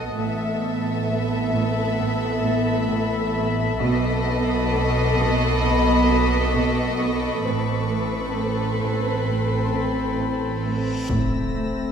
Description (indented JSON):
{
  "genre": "cinematic, suspense film score",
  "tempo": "66 BPM",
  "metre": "4/4",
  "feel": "straight",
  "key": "A hungarian minor",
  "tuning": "A4 = 440 Hz",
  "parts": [
    { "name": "warm symphonic violin section", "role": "melody", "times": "0.0-10.9 s", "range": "B4 to E5", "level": "-28 LUFS", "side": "left 3 dB", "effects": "none" },
    { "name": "warm symphonic violin section", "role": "second line", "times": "0.0-10.9 s", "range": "A4", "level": "-29 LUFS", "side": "left 1 dB", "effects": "none" },
    { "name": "dark studio viola section", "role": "accompaniment", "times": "0.0-10.9 s", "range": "B3 to C4", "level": "-28 LUFS", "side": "right 1 dB", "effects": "none" },
    { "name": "drifting glass-harmonics texture", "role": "sustained chords", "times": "0.0-11.9 s", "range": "C4 to B5", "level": "-29 LUFS", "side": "left 1 dB", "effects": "chorus, built-in reverb" },
    { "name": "rich symphonic double bass section", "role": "bass", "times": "0.0-11.8 s", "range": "A1 to B1", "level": "-27 LUFS", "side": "right 2 dB", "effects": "none" },
    { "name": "warm symphonic cello section", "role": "bass", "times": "0.0-11.8 s", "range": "A2 to B2", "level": "-28 LUFS", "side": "right 1 dB", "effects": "none" },
    { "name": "concert harp", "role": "texture", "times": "0.0-11.1 s", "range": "F#5 to B5", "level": "-30 LUFS", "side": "left 5 dB", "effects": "none" },
    { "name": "warm symphonic cello section", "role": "riff", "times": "0.2-11.8 s", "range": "A2 to B3", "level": "-30 LUFS", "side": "right 2 dB", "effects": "none" },
    { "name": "warm symphonic violin section", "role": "texture", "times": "3.8-11.9 s", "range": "B5 to Bb6", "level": "-35 LUFS", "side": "left 4 dB", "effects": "none" },
    { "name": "reverse cymbal and impact", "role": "sound effects", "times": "10.8-11.9 s", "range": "none", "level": "-30 LUFS", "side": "left 1 dB", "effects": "none" },
    { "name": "dark French horn section", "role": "sustained chords", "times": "11.1-11.9 s", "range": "A3 to C4", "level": "-28 LUFS", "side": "left 4 dB", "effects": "none" }
  ],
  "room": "moderate scoring stage reverb, RT60 1.6 s",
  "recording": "minimal, uncompressed stereo recording",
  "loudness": "-20 LUFS",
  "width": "side -7 dB against mid",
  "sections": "0.0-11.1 A section",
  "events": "reverse cymbal 10.8-11.1; impact 11.1-11.9",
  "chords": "0.2 Asus2; 3.8 B7; 7.5 Amadd9"
}